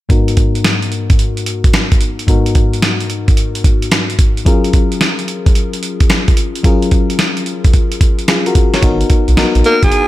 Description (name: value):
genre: R&B, new jack swing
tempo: 110 BPM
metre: 4/4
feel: swing 66% on 16ths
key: unclear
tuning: A4 = 435 Hz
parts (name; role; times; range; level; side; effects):
- FM electric piano with soft pad layer; accompaniment; 0.1-10.1 s; G#2 to C#5; -17 LUFS; left 3 dB; chorus, low-pass filter
- dusty soul sampler-style drum kit; drums; 0.1-10.1 s; hi-hat, kick drum, snare drum; -12 LUFS; equal; gated reverb
- round analog bass; bass; 8.8-9.9 s; G#1 to B1; -14 LUFS; equal; none
- growling alto saxophone; melody; 9.7-10.1 s; G#4 to A#4; -11 LUFS; right 1 dB; none
room: little or no reverb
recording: none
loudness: -11 LUFS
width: side -16 dB against mid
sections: 0.1-8.8 A section; 8.8-10.1 B section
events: filter sweep on FM electric piano 0.1-8.8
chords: 0.1 G#m7; 4.5 F#maj7; 8.8 G#m7